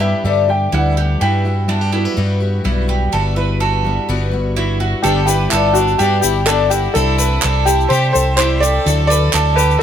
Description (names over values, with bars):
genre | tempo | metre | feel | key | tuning
indie folk with a building arrangement | 126 BPM | 4/4 | straight | G major | A4 = 442 Hz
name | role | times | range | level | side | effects
warm upright piano | melody | 0.0-9.8 s | E4 to G5 | -18 LUFS | left 1 dB | analog delay
fingerpicked steel-string acoustic guitar | accompaniment | 0.0-7.0 s | G2 to B4 | -24 LUFS | left 2 dB | none
picked twelve-string acoustic guitar | accompaniment | 0.0-9.8 s | G2 to G4 | -23 LUFS | left 9 dB | none
bowl-back mandolin | arpeggios | 0.0-9.8 s | D4 to B4 | -21 LUFS | right 7 dB | none
fingered electric bass | bass | 0.0-9.8 s | G1 to C3 | -17 LUFS | equal | none
clear fiddle | second line | 5.0-9.8 s | B3 to A4 | -24 LUFS | left 6 dB | none
felt-muted upright piano | accompaniment | 5.0-9.8 s | G1 to D5 | -28 LUFS | right 3 dB | none
egg shaker | percussion | 5.0-9.8 s | none | -24 LUFS | left 7 dB | none
group handclap | percussion | 5.5-9.4 s | none | -19 LUFS | right 5 dB | none
room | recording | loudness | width
light reverb | none | -13 LUFS | side -9 dB against mid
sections
0.0-3.1 A section; 3.1-5.0 B section; 5.0-9.8 C section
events
none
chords
0.0 G; 1.2 Emadd9/G; 5.0 G; 7.0 Cadd9; 8.9 Dadd9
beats
0.24 0.72 | 1.20 1.68 2.17 2.65 | 3.12 3.60 4.08 4.56 | 5.04 5.52 6.00 6.47 | 6.95 7.43 7.90 8.38 | 8.86 9.34 9.81